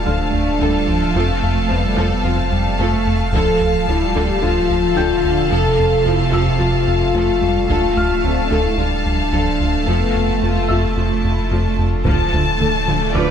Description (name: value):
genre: cinematic, hybrid orchestral and electronic film score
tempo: 110 BPM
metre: 4/4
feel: straight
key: D minor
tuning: A4 = 440 Hz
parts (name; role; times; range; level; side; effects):
- rich symphonic violin section; melody; 0.0-13.3 s; D5 to A5; -25 LUFS; left 5 dB; none
- warm symphonic violin section; second line; 0.0-13.3 s; C4 to F5; -26 LUFS; left 2 dB; none
- evolving wavetable pad; sustained chords; 0.0-13.3 s; F3 to F5; -26 LUFS; equal; chorus, built-in reverb
- mellow French horn section; sustained chords; 0.0-13.3 s; F3 to A4; -21 LUFS; left 3 dB; none
- pure sine sub bass; bass; 0.0-13.3 s; D1 to F1; -24 LUFS; right 1 dB; none
- rich symphonic cello section; bass; 0.0-13.3 s; C3 to B4; -23 LUFS; right 5 dB; none
- felt-muted upright piano; texture; 0.0-13.3 s; E5 to G6; -31 LUFS; equal; ping-pong delay
- rich symphonic viola section; accompaniment; 0.1-13.3 s; D3 to A3; -26 LUFS; right 2 dB; none
- rubbery square bass; riff; 0.1-13.3 s; D2 to D3; -22 LUFS; left 1 dB; none
- taiko ensemble; drums; 3.3-4.4, 7.7-8.7, 12.1-12.6 s; none; -24 LUFS; equal; none
- dark tuba; bass; 12.1-13.3 s; D2; -24 LUFS; right 5 dB; none
- rich symphonic double bass section; bass; 12.1-13.2 s; D2; -25 LUFS; right 4 dB; none
room: moderate scoring stage reverb, RT60 1.6 s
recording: none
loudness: -15 LUFS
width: side -8 dB against mid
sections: 0.0-12.1 A section; 12.1-13.3 B section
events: none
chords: 0.0 Dm; 1.1 F; 3.3 Dm; 5.5 F; 7.7 Dm; 9.9 F; 12.1 Dm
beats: 0.06 0.60 | 1.15 1.69 2.24 2.78 | 3.33 3.87 4.42 4.96 | 5.51 6.06 6.60 7.15 | 7.69 8.24 8.78 9.33 | 9.87 10.42 10.96 11.51 | 12.06 12.60 13.15